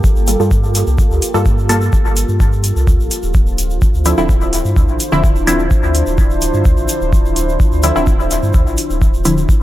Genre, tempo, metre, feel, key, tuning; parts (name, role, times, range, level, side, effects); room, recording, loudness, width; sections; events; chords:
dub techno; 127 BPM; 4/4; straight; A4 = 444 Hz
deep dark ambient pad; sustained chords; 0.0-9.6 s; Bb3 to C5; -21 LUFS; equal; chorus, built-in reverb, sidechain pumping
electronic kick drum; drums; 0.0-9.6 s; -14 LUFS; equal; overdrive
tube shaker; percussion; 0.0-9.6 s; -28 LUFS; left 3 dB
pure sine sub bass; bass; 0.2-9.5 s; D1 to G2; -17 LUFS; equal; sidechain pumping
filtered dub chord stab; stabs; 0.3-9.4 s; D3 to A4; -18 LUFS; equal; chorus, phaser, cassette tape, sidechain pumping, dub echo
electronic hi-hat; drums; 0.3-9.4 s; -20 LUFS; right 1 dB; overdrive
digital ambience; -11 LUFS; side -15 dB against mid
0.0-9.6 A section
0.0 Gm9; 2.9 Dm9